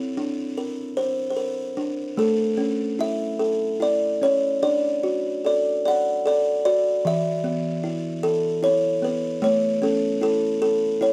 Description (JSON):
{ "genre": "children's music, lullaby", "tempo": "75 BPM", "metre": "3/4", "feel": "rubato", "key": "unclear", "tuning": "A4 = 441 Hz", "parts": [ { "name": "buzzing kalimba", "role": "solo", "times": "0.0-11.1 s", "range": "E3 to F#5", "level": "-23 LUFS", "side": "equal", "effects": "none" } ], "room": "light reverb", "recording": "none", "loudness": "-23 LUFS", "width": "mono", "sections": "0.0-11.1 A section", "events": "none", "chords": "0.0 Bbadd9; 2.2 A; 4.6 D; 7.0 Esus4; 9.4 A" }